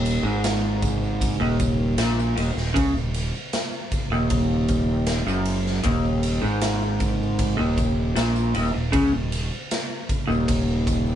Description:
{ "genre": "psychedelic rock", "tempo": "78 BPM", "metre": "4/4", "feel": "straight", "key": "Eb minor", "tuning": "A4 = 440 Hz", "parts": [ { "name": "electric guitar through a small old amp", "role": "riff", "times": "0.0-11.2 s", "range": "Eb2 to Db3", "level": "-23 LUFS", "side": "equal", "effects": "rotary speaker" }, { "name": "fuzz fingered electric bass", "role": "bass", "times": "0.0-11.2 s", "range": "Eb1 to Db2", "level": "-26 LUFS", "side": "right 1 dB", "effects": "overdrive" }, { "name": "raw garage drum kit", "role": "drums", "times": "0.1-11.1 s", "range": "kick drum, ride cymbal, snare drum", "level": "-26 LUFS", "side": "equal", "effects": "none" }, { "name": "tambourine", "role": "percussion", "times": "0.1-11.2 s", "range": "none", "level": "-42 LUFS", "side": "right 6 dB", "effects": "none" } ], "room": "moderate small room reverb, RT60 0.5 s", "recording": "band playing live in one room, nothing above 11.0 kHz", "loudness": "-20 LUFS", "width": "side -10 dB against mid", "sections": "0.0-11.2 A section", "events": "none", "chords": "0.0 Eb5" }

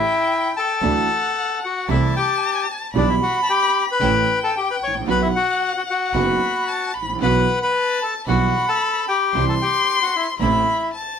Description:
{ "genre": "tango", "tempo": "113 BPM", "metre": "4/4", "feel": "rubato", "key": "unclear", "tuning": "A4 = 440 Hz", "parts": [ { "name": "bandoneon", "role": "melody", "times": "0.0-10.9 s", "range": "D4 to C#6", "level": "-20 LUFS", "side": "left 4 dB", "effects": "none" }, { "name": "rich violin", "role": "second line", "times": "0.0-11.2 s", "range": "F#5 to C6", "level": "-24 LUFS", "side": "left 1 dB", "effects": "none" }, { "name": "warm upright piano", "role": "accompaniment", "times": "0.8-10.6 s", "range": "F#1 to A4", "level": "-22 LUFS", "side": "right 5 dB", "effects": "none" }, { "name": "clear studio string section", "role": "stabs", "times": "0.8-10.6 s", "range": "F#3 to F#4", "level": "-32 LUFS", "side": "right 1 dB", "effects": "none" }, { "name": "rich double bass", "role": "bass", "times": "0.8-10.6 s", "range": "F#1 to D2", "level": "-24 LUFS", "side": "right 2 dB", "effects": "none" } ], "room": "wet studio ambience, RT60 0.5 s", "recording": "band playing live in one room", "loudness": "-17 LUFS", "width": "side -7 dB against mid", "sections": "0.0-11.2 A section", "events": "none", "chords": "0.0 A7(no3); 0.8 Dadd9; 1.9 Am/C; 3.0 Em/B; 4.0 A; 5.1 B; 7.2 Bsus4; 8.3 Emadd9/B; 9.3 C; 10.4 Am" }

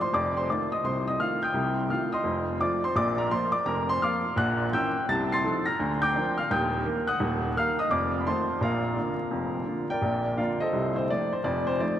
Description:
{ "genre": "jazz, stride piano", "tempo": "170 BPM", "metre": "4/4", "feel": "swing 63% on 8ths", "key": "Bb major", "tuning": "A4 = 440 Hz", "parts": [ { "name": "clear baby grand piano", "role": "solo", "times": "0.0-12.0 s", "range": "Eb1 to C7", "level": "-24 LUFS", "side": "equal", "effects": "none" } ], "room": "wet cathedral reverb, RT60 5.8 s", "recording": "in a vast, echoing space, vinyl crackle", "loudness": "-24 LUFS", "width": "side -10 dB against mid", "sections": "0.0-10.0 A section; 10.0-12.0 A section", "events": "none", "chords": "0.1 F7; 1.5 F7/C; 2.2 F7; 3.0 Bb; 4.4 Bbdim7; 5.1 F7/C; 5.8 Bb/D; 6.5 Eb; 7.2 Ebm; 7.9 F7; 8.6 Bb; 10.7 F/C; 11.4 F7" }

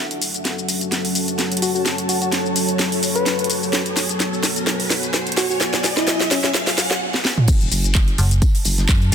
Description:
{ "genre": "bass house", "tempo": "128 BPM", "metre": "4/4", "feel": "swing 54% on 16ths", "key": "F# minor", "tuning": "A4 = 440 Hz", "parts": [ { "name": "dark analog pad", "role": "sustained chords", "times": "0.0-9.1 s", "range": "F#3 to A4", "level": "-26 LUFS", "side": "left 2 dB", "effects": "chorus, sidechain pumping" }, { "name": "riser", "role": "sound effects", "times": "0.0-7.0 s", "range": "none", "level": "-30 LUFS", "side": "equal", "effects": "none" }, { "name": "ethereal airy pad", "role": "texture", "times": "0.0-9.1 s", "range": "F#4 to A5", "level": "-28 LUFS", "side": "right 1 dB", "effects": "ensemble chorus, built-in reverb, tremolo, sidechain pumping" }, { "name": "house drum kit", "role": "drums", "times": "0.1-9.1 s", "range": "crash cymbal, handclaps, hi-hat, shaker, snare drum, toms", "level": "-20 LUFS", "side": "equal", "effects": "none" }, { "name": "soft struck synth lead", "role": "melody", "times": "1.6-6.5 s", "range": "C#4 to B4", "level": "-25 LUFS", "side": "left 2 dB", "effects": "chorus, ping-pong delay" }, { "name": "vowel-sweep wobble bass", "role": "bass", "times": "7.5-8.9 s", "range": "E1 to F#1", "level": "-21 LUFS", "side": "equal", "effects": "chorus, tube saturation, sidechain pumping" }, { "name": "electronic kick drum", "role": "drums", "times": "7.5-9.0 s", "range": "none", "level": "-17 LUFS", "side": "equal", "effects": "none" }, { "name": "modern studio drum kit", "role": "drums", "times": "7.5-9.1 s", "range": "hi-hat, snare drum, tambourine", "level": "-33 LUFS", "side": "right 3 dB", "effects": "sidechain pumping on hats, high-pass filter on hats, high-pass filter on snare, sidechain pumping on perc, high-pass filter on perc, high-pass filter on room" }, { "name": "metallic FM bass", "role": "bass", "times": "8.2-9.1 s", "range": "F#1 to F#2", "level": "-16 LUFS", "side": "equal", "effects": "overdrive, sidechain pumping" } ], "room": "light reverb, digital ambience", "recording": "dense, heavily limited modern master", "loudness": "-17 LUFS", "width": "side -8 dB against mid", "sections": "0.0-7.5 A section; 7.5-9.1 B section", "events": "build-up 0.0-7.5; drum fill 0.0-7.0, 7.1-7.5; riser 0.0-7.0; drop 7.5-9.1", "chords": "0.0 F#m" }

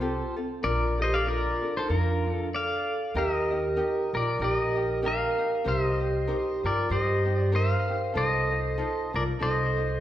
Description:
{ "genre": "Hawaiian", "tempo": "96 BPM", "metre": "4/4", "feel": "swing 58% on 8ths", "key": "Bb major, Eb major from 3.1 s", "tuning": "A4 = 438 Hz", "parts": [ { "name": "pedal steel guitar", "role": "melody", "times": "0.0-10.0 s", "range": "F4 to F5", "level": "-28 LUFS", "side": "left 1 dB", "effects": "digital delay" }, { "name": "vibraphone with medium hard mallets", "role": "second line", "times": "0.0-10.0 s", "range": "D4 to Bb4", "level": "-31 LUFS", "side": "right 2 dB", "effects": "none" }, { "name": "ukulele", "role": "accompaniment", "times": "0.0-10.0 s", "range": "C4 to Eb5", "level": "-35 LUFS", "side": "left 1 dB", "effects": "none" }, { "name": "upright bass", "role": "bass", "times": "0.0-10.0 s", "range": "Bb1 to G2", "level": "-30 LUFS", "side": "equal", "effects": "none" } ], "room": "wet large studio reverb, RT60 1.3 s", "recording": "band playing live in one room", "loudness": "-24 LUFS", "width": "side -12 dB against mid", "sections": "0.0-3.1 A section; 3.1-10.0 B section", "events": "stop 2.5-3.1", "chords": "0.0 Fadd9; 0.6 Bbmaj7; 3.1 Eb; 5.7 Cm7; 8.2 F7/C" }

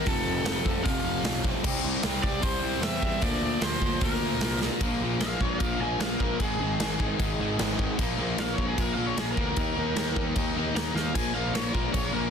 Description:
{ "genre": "punk rock", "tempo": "152 BPM", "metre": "4/4", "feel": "straight", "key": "Bb major", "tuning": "A4 = 444 Hz", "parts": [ { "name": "raw garage guitar", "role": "melody", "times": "0.0-12.3 s", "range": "Ab4 to Bb5", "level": "-33 LUFS", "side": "left 1 dB", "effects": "overdrive, digital delay" }, { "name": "distorted electric guitar", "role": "riff", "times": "0.0-12.3 s", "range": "F2 to Eb4", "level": "-29 LUFS", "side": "left 1 dB", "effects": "distortion" }, { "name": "fuzz picked electric bass", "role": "bass", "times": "0.1-12.3 s", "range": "F1 to E2", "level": "-33 LUFS", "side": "equal", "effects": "overdrive" }, { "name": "big rock drum kit", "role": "drums", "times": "0.1-12.0 s", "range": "crash cymbal, hi-hat, kick drum, snare drum, splash cymbal", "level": "-30 LUFS", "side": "equal", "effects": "soft clipping on snare" } ], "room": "light reverb", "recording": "dense, heavily limited modern master", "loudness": "-25 LUFS", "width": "side -7 dB against mid", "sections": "0.0-4.8 A section; 4.8-12.3 B section", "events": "drum fill 4.6, 10.9; overdriven electric guitar solo 4.8-12.3", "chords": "0.1 F; 1.6 C; 3.2 Bb/D; 4.8 Bb5; 6.4 Ab5; 8.0 Bb5; 9.6 Eb5; 11.1 Bb5" }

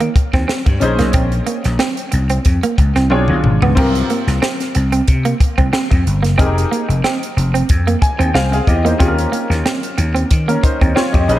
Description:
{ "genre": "polished 1980s jazz-funk pop", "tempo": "92 BPM", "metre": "4/4", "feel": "swing 54% on 16ths", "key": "unclear", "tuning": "A4 = 441 Hz", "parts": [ { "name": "clear baby grand piano", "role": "accompaniment", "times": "0.0-11.4 s", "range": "C4 to Ab5", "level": "-20 LUFS", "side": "left 2 dB", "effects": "analog chorus" }, { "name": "electric guitar at the edge of break-up", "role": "riff", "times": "0.0-11.2 s", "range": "Bb3 to C4", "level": "-20 LUFS", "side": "right 4 dB", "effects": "analog chorus" }, { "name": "vintage slap bass", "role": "bass", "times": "0.0-11.4 s", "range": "F1 to Eb3", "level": "-16 LUFS", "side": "equal", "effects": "none" }, { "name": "crisp fusion drum kit", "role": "drums", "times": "0.0-11.4 s", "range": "crash cymbal, hi-hat, kick drum, snare drum, toms", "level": "-16 LUFS", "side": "equal", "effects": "none" } ], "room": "light reverb, small room ambience", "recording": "dark, warm production", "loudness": "-13 LUFS", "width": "side -14 dB against mid", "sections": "0.0-11.4 A section", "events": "drum fill 3.1-3.8; grand piano fill 7.7-9.0", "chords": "0.0 Eb7; 0.8 Bbm11; 3.1 Bdim7; 3.8 C7sus4; 6.4 Fm11; 9.0 Eb7" }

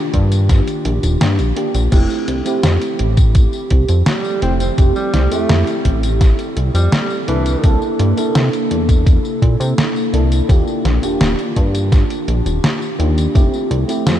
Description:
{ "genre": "vaporwave", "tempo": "84 BPM", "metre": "4/4", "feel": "straight", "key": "F major", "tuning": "A4 = 440 Hz", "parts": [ { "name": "FM electric piano with soft pad layer", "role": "accompaniment", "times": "0.0-14.2 s", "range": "A3 to A4", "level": "-21 LUFS", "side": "right 1 dB", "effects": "lush chorus, cassette tape, analog delay" }, { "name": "warbly tape-like pad", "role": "sustained chords", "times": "0.0-14.2 s", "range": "C3 to A4", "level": "-24 LUFS", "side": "equal", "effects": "chorus, built-in reverb" }, { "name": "chorused synth bass", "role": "bass", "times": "0.1-14.2 s", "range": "Eb1 to C3", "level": "-16 LUFS", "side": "equal", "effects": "none" }, { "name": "detuned 8-bit digital drum machine", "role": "drums", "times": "0.1-14.2 s", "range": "crash cymbal, hi-hat, snare drum, tambourine", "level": "-21 LUFS", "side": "equal", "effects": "none" }, { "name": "electronic kick drum", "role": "drums", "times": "0.1-13.5 s", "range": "none", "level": "-12 LUFS", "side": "equal", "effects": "none" }, { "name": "breathy tenor saxophone", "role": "melody", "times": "4.1-7.8 s", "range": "E3 to C4", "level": "-25 LUFS", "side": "equal", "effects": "tape echo" } ], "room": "light reverb", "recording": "none", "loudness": "-13 LUFS", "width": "side -11 dB against mid", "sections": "0.0-14.2 A section", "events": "kick drops out 1.2-1.9", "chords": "0.0 Ebmaj9; 1.9 Fmaj9; 7.3 C13; 10.5 Ebmaj9; 13.4 Fmaj9" }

